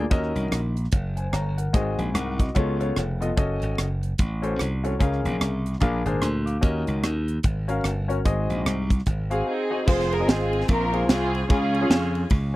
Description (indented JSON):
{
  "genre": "uptempo gospel",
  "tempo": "148 BPM",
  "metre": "4/4",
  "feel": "swing 60% on 8ths",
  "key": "Db major",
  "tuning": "A4 = 439 Hz",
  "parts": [
    { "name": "warm grand piano", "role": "accompaniment", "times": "0.0-12.2 s", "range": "Ab2 to D6", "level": "-28 LUFS", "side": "left 2 dB", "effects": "none" },
    { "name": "glassy slap bass", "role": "bass", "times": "0.0-12.6 s", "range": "F1 to F2", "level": "-26 LUFS", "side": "equal", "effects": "none" },
    { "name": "crisp fusion drum kit", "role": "drums", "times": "0.1-12.4 s", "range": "crash cymbal, hi-hat, kick drum, ride cymbal, rim click, snare drum", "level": "-22 LUFS", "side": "equal", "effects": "none" },
    { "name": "warm symphonic string section", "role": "melody", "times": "9.3-12.3 s", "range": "C4 to C5", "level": "-25 LUFS", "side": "right 1 dB", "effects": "none" }
  ],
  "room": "little or no reverb",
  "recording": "dry, close 1970s-style studio recording",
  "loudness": "-22 LUFS",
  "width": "side -17 dB against mid",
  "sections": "0.0-9.9 A section; 9.9-12.6 B section",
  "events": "none",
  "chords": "0.1 Ebm7; 1.7 Ab7; 2.6 Db7b13; 3.4 Gbm6; 5.0 Db6; 5.8 Bb7; 6.6 Ebm7; 8.3 Ab7; 9.9 Fm; 11.5 Db",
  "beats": "| 0.11 0.52 0.93 1.33 | 1.74 2.15 2.56 2.96 | 3.37 3.78 4.19 4.59 | 5.00 5.41 5.82 6.22 | 6.63 7.04 7.44 7.85 | 8.25 8.66 9.07 9.47 | 9.88 10.28 10.69 11.09 | 11.49 11.90 12.30"
}